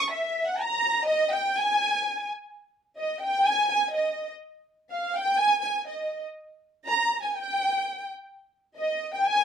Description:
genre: mexican folk.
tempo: 125 BPM.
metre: 2/4.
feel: straight.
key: unclear.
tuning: A4 = 440 Hz.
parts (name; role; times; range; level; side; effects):
dark symphonic violin section; solo; 0.0-9.4 s; D#5 to C#6; -24 LUFS; equal; none.
room: moderate studio reverb, RT60 0.7 s.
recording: dark, warm production.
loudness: -24 LUFS.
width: side -8 dB against mid.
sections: 0.0-2.5 A section; 2.5-9.4 B section.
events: none.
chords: none.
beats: 0.10 | 0.58 1.06 | 1.54 2.02 | 2.51 2.99 | 3.47 3.95 | 4.43 4.92 | 5.40 5.89 | 6.37 6.86 | 7.35 7.83 | 8.31 8.79 | 9.27.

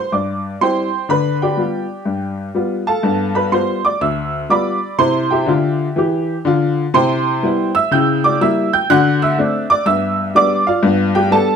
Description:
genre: jazz, stride piano.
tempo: 123 BPM.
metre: 4/4.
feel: swing 66% on 8ths.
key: C major, G major from 6.9 s.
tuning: A4 = 440 Hz.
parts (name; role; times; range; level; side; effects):
clear upright piano; solo; 0.0-11.6 s; D2 to G6; -14 LUFS; equal; none.
room: moderate studio reverb, RT60 0.9 s.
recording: dark, warm production.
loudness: -14 LUFS.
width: side -7 dB against mid.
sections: 0.0-11.6 A section.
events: none.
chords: 0.0 C; 1.1 G7/D; 3.0 G9; 5.0 C; 6.9 Cmaj7; 7.9 C#dim7; 8.9 D7; 9.9 G; 10.8 G7.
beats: 0.12 0.61 | 1.10 1.58 2.07 2.56 | 3.04 3.53 4.01 4.50 | 4.99 5.47 5.96 6.45 | 6.93 7.42 7.91 8.39 | 8.88 9.37 9.85 10.34 | 10.82 11.31.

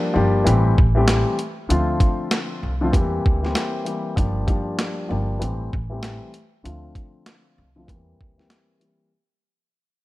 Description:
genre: hip hop, boom-bap hip-hop.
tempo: 97 BPM.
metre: 4/4.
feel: swing 62% on 16ths.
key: unclear.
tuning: A4 = 440 Hz.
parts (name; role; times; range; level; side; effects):
dark concert grand piano; accompaniment; 0.0-9.1 s; D3 to G4; -23 LUFS; left 2 dB; cassette tape, high-pass filter, low-pass filter.
upright bass; bass; 0.2-8.5 s; G1 to E2; -22 LUFS; equal; none.
boom bap sampler-style drum kit; drums; 0.5-9.0 s; hi-hat, kick drum, snare drum; -21 LUFS; equal; none.
room: light reverb, studio ambience.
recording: none.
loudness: -19 LUFS.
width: side -18 dB against mid.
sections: 0.0-9.1 A section.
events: fade-out 0.0-9.1; filter sweep on grand piano 0.0-9.1.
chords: 0.5 Am7; 1.7 Dm7; 2.9 C7; 4.2 Gm7; 5.4 Am7; 6.6 Dm7; 7.9 C7.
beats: 0.46 1.08 | 1.70 2.32 2.93 3.55 | 4.17 4.79 5.41 6.03 | 6.65 7.26 7.88 8.50.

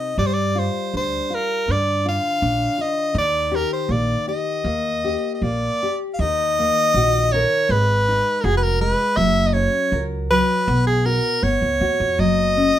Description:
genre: fado-style ballad.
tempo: 80 BPM.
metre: 2/4.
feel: rubato.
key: Eb major, Eb minor from 6.2 s.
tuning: A4 = 439 Hz.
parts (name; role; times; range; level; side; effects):
edgy soprano saxophone; melody; 0.0-12.8 s; Ab4 to F5; -20 LUFS; equal; none.
nylon-string guitar; accompaniment; 0.0-12.8 s; C3 to Bb4; -24 LUFS; left 2 dB; none.
upright bass; bass; 0.2-12.7 s; F1 to G2; -22 LUFS; right 1 dB; none.
room: moderate studio ambience, RT60 0.5 s.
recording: none.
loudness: -17 LUFS.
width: side -11 dB against mid.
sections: 0.0-6.2 A section; 6.2-12.8 B section.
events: none.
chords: 0.2 G7(no3); 3.2 Ebmaj7; 6.2 Ebm; 7.7 Abm7; 9.2 Gb; 10.7 B5; 12.2 Gb5.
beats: | 0.17 0.94 | 1.69 2.42 | 3.15 3.89 | 4.65 5.42 | 6.20 6.95 | 7.70 8.45 | 9.19 9.93 | 10.68 11.44 | 12.20.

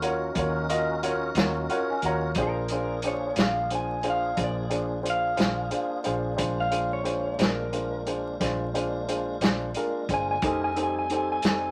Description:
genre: slow blues.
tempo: 60 BPM (dotted quarters).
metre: 12/8.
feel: straight.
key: Bb mixolydian.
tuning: A4 = 440 Hz.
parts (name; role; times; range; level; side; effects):
electric guitar through a small old amp; melody; 0.0-11.7 s; Bb4 to Ab5; -32 LUFS; equal; none.
warm upright piano; accompaniment; 0.0-11.7 s; D4 to Bb5; -31 LUFS; equal; none.
tonewheel organ; sustained chords; 0.0-11.7 s; G3 to Bb4; -38 LUFS; equal; slow rotary speaker, chorus vibrato.
vintage muted fingered electric bass; bass; 0.0-11.7 s; F1 to Eb2; -37 LUFS; equal; none.
vintage drum kit; drums; 0.0-11.6 s; hi-hat, kick drum, snare drum; -30 LUFS; equal; none.
room: light reverb.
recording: vinyl crackle.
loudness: -27 LUFS.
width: mono.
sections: 0.0-11.7 A section.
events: upright piano fill 1.4-2.4.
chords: 0.0 Ebm7; 2.4 Bb7; 10.4 F7.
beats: 0.35 1.35 | 2.36 3.37 4.38 5.38 | 6.39 7.40 8.40 9.41 | 10.42 11.43.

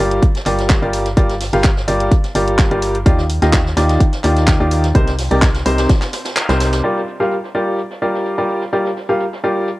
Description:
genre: piano house.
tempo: 127 BPM.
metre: 4/4.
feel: straight.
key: G minor.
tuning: A4 = 438 Hz.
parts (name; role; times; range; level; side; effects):
bright upright piano; riff; 0.0-9.7 s; C3 to F5; -17 LUFS; equal; sidechain pumping, low-pass filter, tape echo.
organ-like FM bass; bass; 0.0-6.8 s; G1 to Eb2; -18 LUFS; equal; sidechain pumping.
house drum kit; drums; 0.1-6.9 s; crash cymbal, handclaps, hi-hat; -23 LUFS; equal; low-pass filter on snare, cassette tape, low-pass filter on hats, low-pass filter on cymbals, low-pass filter on room.
electronic kick drum; drums; 0.2-6.0 s; none; -13 LUFS; equal; cassette tape.
jazz brush drum kit; drums; 0.2-9.8 s; hi-hat, snare drum; -29 LUFS; right 1 dB; sidechain pumping on hats, high-pass filter on hats, low-pass filter on hats, cassette tape, high-pass filter on snare, low-pass filter on snare, high-pass filter on room, low-pass filter on room.
room: light reverb, small room reverb.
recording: home recording on cassette.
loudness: -13 LUFS.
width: side -18 dB against mid.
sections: 0.0-6.8 A section; 6.8-9.8 B section.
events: kick drops out 6.4-6.8; band accent 6.4.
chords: 0.0 Gm7; 3.1 Ebmaj9; 4.9 Cm7; 6.8 Gm7.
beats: 0.23 0.70 | 1.17 1.64 2.12 2.59 | 3.06 3.53 4.00 4.48 | 4.95 5.42 5.89 6.37 | 6.84 7.31 7.78 8.26 | 8.73 9.20 9.67.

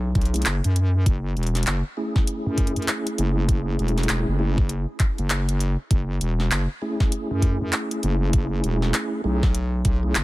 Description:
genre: glitch hop.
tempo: 99 BPM.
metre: 4/4.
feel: swing 61% on 16ths.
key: F# minor.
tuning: A4 = 440 Hz.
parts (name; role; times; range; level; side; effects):
wobble bass; bass; 0.0-10.2 s; E1 to F#2; -22 LUFS; equal; chorus, overdrive.
electronic kick drum; drums; 0.2-10.0 s; none; -21 LUFS; equal; overdrive.
pop drum kit; drums; 0.2-10.2 s; handclaps, hi-hat, snare drum; -27 LUFS; equal; overdrive.
mellow tonewheel organ; stabs; 0.3-10.2 s; A3 to G#4; -28 LUFS; right 1 dB; chorus vibrato, fast rotary speaker, sidechain pumping, dub echo.
room: digital ambience.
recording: none.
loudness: -20 LUFS.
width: side -18 dB against mid.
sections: 0.0-10.2 A section.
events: none.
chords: 0.0 F#m7.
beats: 0.46 | 1.06 1.67 2.27 2.88 | 3.49 4.09 4.70 5.30 | 5.91 6.52 7.12 7.73 | 8.33 8.94 9.55 10.15.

